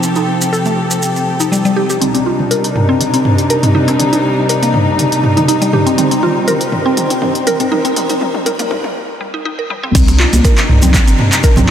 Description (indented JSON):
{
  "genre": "afro house",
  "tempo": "121 BPM",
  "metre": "4/4",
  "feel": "swing 53% on 16ths",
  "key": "C dorian",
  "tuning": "A4 = 440 Hz",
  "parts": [
    { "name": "dark studio string section", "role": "sustained chords", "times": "0.0-11.7 s", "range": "C3 to A4", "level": "-16 LUFS", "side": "left 1 dB", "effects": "sidechain pumping, low-pass filter" },
    { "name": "maracas", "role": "percussion", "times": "0.0-2.0, 10.0-11.7 s", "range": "none", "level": "-23 LUFS", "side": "right 2 dB", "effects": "none" },
    { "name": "mallet-like synth pluck", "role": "arpeggios", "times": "0.2-11.7 s", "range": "G3 to Bb4", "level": "-16 LUFS", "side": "equal", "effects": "chorus, sidechain pumping, tape echo" },
    { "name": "warm sub bass", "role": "bass", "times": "2.0-11.6 s", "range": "G1 to C2", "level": "-17 LUFS", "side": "equal", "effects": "sidechain pumping, high-pass filter" },
    { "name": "deep house drum kit", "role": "drums", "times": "2.0-11.7 s", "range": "crash cymbal, handclaps, hi-hat, toms", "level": "-17 LUFS", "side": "equal", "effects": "none" },
    { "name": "electronic kick drum", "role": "drums", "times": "10.0-11.5 s", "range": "none", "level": "-11 LUFS", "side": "equal", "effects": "none" },
    { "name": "congas", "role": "percussion", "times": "10.1-11.7 s", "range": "none", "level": "-19 LUFS", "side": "right 1 dB", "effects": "none" }
  ],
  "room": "wet huge ambient reverb, RT60 4.1 s",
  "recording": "dreamy mix soaked in reverb, high-pass filter",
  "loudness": "-11 LUFS",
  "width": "side -9 dB against mid",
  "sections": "0.0-2.0 A section; 2.0-9.9 B section; 9.9-11.7 C section",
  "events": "build-up 2.0-9.9; drum fill 2.0-9.0, 9.7; filter sweep on synth arpeggio sound 2.0-9.9; filter sweep 2.0-9.9; break 9.0-9.9; drop 9.9-11.7",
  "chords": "0.0 F/C; 2.0 Cm9"
}